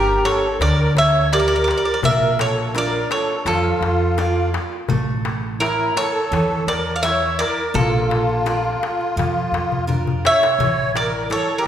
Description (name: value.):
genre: greek folk, Greek bouzouki band.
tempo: 84 BPM.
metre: 4/4.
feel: straight.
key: A phrygian dominant.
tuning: A4 = 441 Hz.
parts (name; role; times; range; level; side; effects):
Greek bouzouki; melody; 0.0-11.7 s; A4 to F5; -20 LUFS; right 1 dB; none.
musette accordion; second line; 0.0-11.7 s; E4 to D5; -23 LUFS; equal; none.
picked steel-string acoustic guitar; accompaniment; 0.0-11.7 s; D3 to E5; -24 LUFS; right 1 dB; none.
upright bass; bass; 0.0-11.7 s; G1 to F2; -25 LUFS; equal; none.
darbuka; percussion; 0.1-11.6 s; none; -26 LUFS; left 3 dB; none.
room: wet recital hall reverb, RT60 1.6 s.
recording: recorded in a church or concert hall.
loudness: -16 LUFS.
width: side -10 dB against mid.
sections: 0.0-10.6 A section; 10.6-11.7 B section.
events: drum fill 9.7-10.6.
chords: 0.0 Gm; 2.0 Bb; 4.9 A; 7.7 Bb; 10.6 A.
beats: 0.60 1.32 | 2.03 2.75 3.46 4.17 | 4.89 5.60 6.32 7.03 | 7.74 8.45 9.16 9.88 | 10.59 11.30.